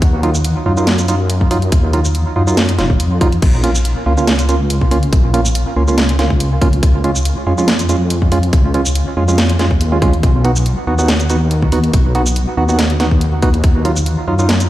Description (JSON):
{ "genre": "deep dubstep", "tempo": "141 BPM", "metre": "4/4", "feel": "swing 54% on 16ths, half-time", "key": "unclear", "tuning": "A4 = 440 Hz", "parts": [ { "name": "deep soft wobble bass", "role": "bass", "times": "0.0-14.7 s", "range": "Eb1 to Gb2", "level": "-15 LUFS", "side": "equal", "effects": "chorus" }, { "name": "electronic kick drum", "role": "drums", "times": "0.0-13.7 s", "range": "none", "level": "-14 LUFS", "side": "equal", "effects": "small room ambience" }, { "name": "garage drum kit", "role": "drums", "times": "0.0-14.7 s", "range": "crash cymbal, hi-hat, shaker, snare drum", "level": "-20 LUFS", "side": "equal", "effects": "small room ambience" }, { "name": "percussive organ stab", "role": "stabs", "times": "0.2-14.5 s", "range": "Gb3 to F#4", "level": "-18 LUFS", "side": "right 2 dB", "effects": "chorus, dub echo" } ], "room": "light reverb", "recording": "played on a big sound system in a bare room, large studio reverb", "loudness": "-12 LUFS", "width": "side -14 dB against mid", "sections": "0.0-14.7 A section", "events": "none", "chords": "0.0 Ebmadd9; 3.4 Bbm; 6.8 Db; 10.2 B; 13.6 Ebmadd9" }